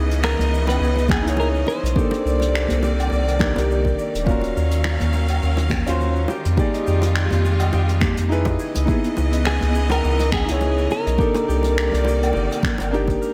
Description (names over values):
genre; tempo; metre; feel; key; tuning
sunset chillout; 104 BPM; 4/4; swing 55% on 16ths; unclear; A4 = 439 Hz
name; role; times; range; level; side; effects
warm baby grand piano; accompaniment; 0.0-13.3 s; Bb3 to D5; -28 LUFS; equal; tape echo
clear studio string section; sustained chords; 0.0-13.3 s; C3 to F5; -30 LUFS; equal; none
Celtic harp; arpeggios; 0.0-13.3 s; G4 to G5; -33 LUFS; equal; tape echo
round analog bass; bass; 0.0-13.2 s; Eb1 to F2; -23 LUFS; equal; none
jazz brush drum kit; drums; 0.1-13.3 s; finger snaps, hi-hat, shaker, woodblock; -32 LUFS; equal; none
clean electric guitar; melody; 0.2-2.8, 9.5-12.9 s; Ab4 to C5; -28 LUFS; equal; tape echo
bongos and congas; percussion; 0.2-13.2 s; none; -31 LUFS; equal; none
electronic kick drum; drums; 1.1-13.2 s; none; -25 LUFS; equal; none
room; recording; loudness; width
light reverb; none; -20 LUFS; mono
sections
0.0-13.3 A section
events
none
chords
0.0 Dbm9; 2.0 Cm9; 4.3 Ebm9; 6.3 Fm9; 8.6 Dbm9; 11.2 Cm9